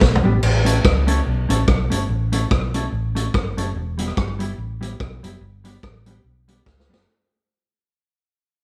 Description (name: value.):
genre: ska.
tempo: 144 BPM.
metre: 4/4.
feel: swing 56% on 8ths.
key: A mixolydian.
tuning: A4 = 440 Hz.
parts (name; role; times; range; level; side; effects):
hollow-body short-scale fingered electric bass; bass; 0.0-7.0 s; E1 to C#2; -24 LUFS; equal; none.
vintage drum kit; drums; 0.0-7.0 s; crash cymbal, hi-hat, kick drum, rim click, snare drum, toms; -22 LUFS; equal; none.
mellow electric guitar; accompaniment; 0.2-7.0 s; G3 to A4; -28 LUFS; equal; none.
room: moderate stone room reverb, RT60 1.0 s.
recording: band playing live in one room.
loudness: -20 LUFS.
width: mono.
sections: 0.4-7.1 A section.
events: drum fill 0.0-0.4, 6.7-7.1; fade-out 0.4-7.1.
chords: 0.4 A; 3.8 Em; 5.4 G.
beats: 0.01 | 0.43 0.84 1.26 1.67 | 2.09 2.50 2.92 3.33 | 3.75 4.17 4.58 5.00 | 5.41 5.83 6.25 6.66.